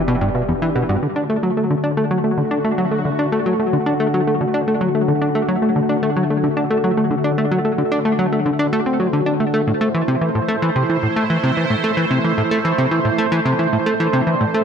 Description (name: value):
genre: ambient, sequencer-driven space music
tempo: 111 BPM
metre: 4/4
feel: straight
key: unclear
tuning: A4 = 441 Hz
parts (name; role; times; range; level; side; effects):
- sweeping resonant pad; sustained chords; 0.0-14.6 s; D3 to C5; -20 LUFS; equal; chorus
- warbly dusty pluck; arpeggios; 0.0-1.0 s; B3 to E5; -29 LUFS; right 1 dB; chorus, auto-pan, analog delay
- plucky analog bass; riff; 0.0-14.6 s; E2 to D4; -18 LUFS; equal; analog delay
- warm sub bass; bass; 0.0-1.0 s; E1; -32 LUFS; equal; none
room: moderate plate reverb, RT60 2.9 s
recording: none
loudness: -16 LUFS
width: side -7 dB against mid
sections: 0.0-1.0 A section; 1.0-14.6 B section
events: none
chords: 0.0 Em; 1.0 D; 9.7 Am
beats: 0.49 | 1.03 1.57 2.11 2.65 | 3.19 3.73 4.27 4.81 | 5.35 5.89 6.43 6.97 | 7.51 8.05 8.59 9.13 | 9.68 10.22 10.76 11.30 | 11.84 12.38 12.92 13.46 | 14.00 14.54